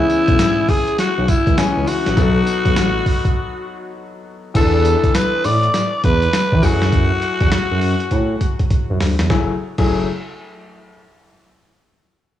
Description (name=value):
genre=R&B, new jack swing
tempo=101 BPM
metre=4/4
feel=swing 63% on 16ths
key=F# minor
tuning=A4 = 441 Hz
part: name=growling tenor saxophone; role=melody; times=0.0-8.7 s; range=C#4 to D5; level=-19 LUFS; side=left 1 dB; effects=cassette tape, analog delay
part: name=clear concert grand piano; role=accompaniment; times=0.0-10.1 s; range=E3 to A4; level=-24 LUFS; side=left 8 dB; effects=cassette tape
part: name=smooth gliding synth bass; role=bass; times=0.0-10.1 s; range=F#1 to E3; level=-18 LUFS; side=right 1 dB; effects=none
part: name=boom bap sampler-style drum kit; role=drums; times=0.1-9.9 s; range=crash cymbal, hi-hat, kick drum, snare drum, tambourine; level=-19 LUFS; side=equal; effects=cassette tape
room=little or no reverb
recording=home recording on cassette, studio reverb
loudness=-14 LUFS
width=side -12 dB against mid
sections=0.0-4.5 A section; 4.5-9.3 B section; 9.3-11.7 C section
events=break 3.4-4.5; drum fill 8.1-9.3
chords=0.0 C#m7; 2.2 B7; 4.5 E7sus4; 6.6 F#m9